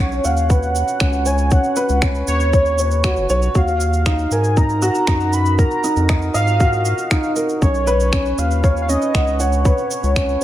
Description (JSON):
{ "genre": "piano and strings electronica", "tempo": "118 BPM", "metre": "4/4", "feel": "straight", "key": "unclear", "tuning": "A4 = 440 Hz", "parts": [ { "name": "warm velvety synth lead", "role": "melody", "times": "0.0-10.4 s", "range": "C#5 to Cb6", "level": "-21 LUFS", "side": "equal", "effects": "chorus" }, { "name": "dark upright piano", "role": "riff", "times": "0.0-10.4 s", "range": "C#4 to F#5", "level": "-21 LUFS", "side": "equal", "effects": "tape echo" }, { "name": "round analog bass", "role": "bass", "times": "0.0-10.4 s", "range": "F#1 to Ab2", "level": "-19 LUFS", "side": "equal", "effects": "sidechain pumping" }, { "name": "electronic shaker and finger snaps", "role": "drums", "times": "0.1-10.4 s", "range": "none", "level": "-26 LUFS", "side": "right 1 dB", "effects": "none" }, { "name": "electronic kick drum", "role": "drums", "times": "0.5-10.3 s", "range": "none", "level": "-16 LUFS", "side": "equal", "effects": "none" } ], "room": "light reverb", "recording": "none", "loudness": "-15 LUFS", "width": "side -13 dB against mid", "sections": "0.0-10.4 A section", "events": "none", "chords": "0.0 Bsus2; 3.6 Ebmadd9; 7.6 Bsus2" }